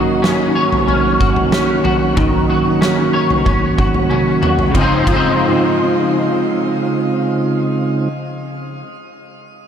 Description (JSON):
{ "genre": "dream pop", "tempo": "93 BPM", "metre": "4/4", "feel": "straight", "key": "Db major", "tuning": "A4 = 442 Hz", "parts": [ { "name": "mellow tonewheel organ", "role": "sustained chords", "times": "0.0-8.1 s", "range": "Db3 to Gb4", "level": "-17 LUFS", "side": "right 3 dB", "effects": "slow rotary speaker" }, { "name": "electric guitar at the edge of break-up", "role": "arpeggios", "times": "0.0-8.9 s", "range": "Db3 to Db5", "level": "-17 LUFS", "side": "left 2 dB", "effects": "ensemble chorus, tape echo" }, { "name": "oversized low-tuned drum kit", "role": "drums", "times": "0.2-5.2 s", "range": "kick drum, ride cymbal, snare drum, toms", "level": "-18 LUFS", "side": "equal", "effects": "none" } ], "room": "moderate shimmer reverb, RT60 5.5 s", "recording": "none", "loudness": "-13 LUFS", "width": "side -8 dB against mid", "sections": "0.0-4.7 A section; 4.7-7.3 B section", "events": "drum fill 4.1-4.7", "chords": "0.0 Ebm7; 4.7 Dbmaj9", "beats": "0.23 0.88 1.52 | 2.17 2.81 3.46 4.10 | 4.75 5.39 6.04 6.68" }